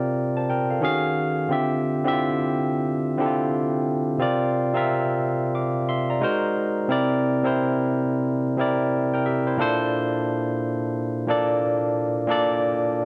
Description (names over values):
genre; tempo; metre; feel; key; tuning
R&B; 89 BPM; 4/4; swing 62% on 16ths; unclear; A4 = 439 Hz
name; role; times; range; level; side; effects
barky tine electric piano; solo; 0.0-13.1 s; Bb2 to D6; -23 LUFS; equal; overdrive
room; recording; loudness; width
light reverb, digital ambience; dark, warm production; -23 LUFS; mono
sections
0.0-9.6 A section; 9.6-13.1 B section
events
none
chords
0.0 C7sus4; 0.8 Ebm11; 1.5 Dm11; 4.2 C7sus4; 6.2 Ab9; 6.9 C9; 9.6 Bbmaj9